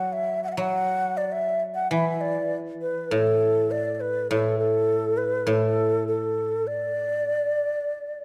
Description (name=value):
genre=chinese traditional, Chinese chamber ensemble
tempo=100 BPM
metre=4/4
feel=rubato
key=unclear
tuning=A4 = 440 Hz
part: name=breathy mellow xiao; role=melody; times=0.0-8.2 s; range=A4 to F#5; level=-26 LUFS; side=equal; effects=none
part: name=guzheng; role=accompaniment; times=0.0-7.3 s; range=A2 to F#3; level=-30 LUFS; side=equal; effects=none
room=moderate concert hall reverb, RT60 2.1 s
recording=dark, warm production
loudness=-25 LUFS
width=mono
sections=0.0-8.2 A section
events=none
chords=none